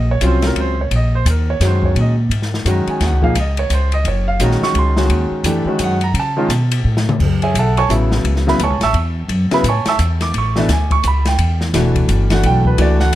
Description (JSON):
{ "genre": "modal jazz", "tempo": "172 BPM", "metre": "3/4", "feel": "swing 62% on 8ths", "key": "Eb dorian, F# minor from 7.2 s", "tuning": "A4 = 440 Hz", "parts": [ { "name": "clear baby grand piano", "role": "accompaniment", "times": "0.0-13.2 s", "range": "B2 to E6", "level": "-18 LUFS", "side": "right 1 dB", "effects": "none" }, { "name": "upright bass", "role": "bass", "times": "0.0-13.2 s", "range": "E1 to Db3", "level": "-16 LUFS", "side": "equal", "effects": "none" }, { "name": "open jazz drum kit", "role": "drums", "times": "0.2-13.2 s", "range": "crash cymbal, hi-hat, kick drum, ride cymbal, snare drum, toms", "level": "-22 LUFS", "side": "left 2 dB", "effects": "none" } ], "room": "little or no reverb", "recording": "none", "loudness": "-13 LUFS", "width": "side -14 dB against mid", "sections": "0.0-7.2 A section; 7.2-13.2 A section", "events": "drum fill 6.8-7.2", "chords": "0.0 Ebm9; 6.1 Db7(#5, no3); 7.2 F#m9; 11.4 Em9" }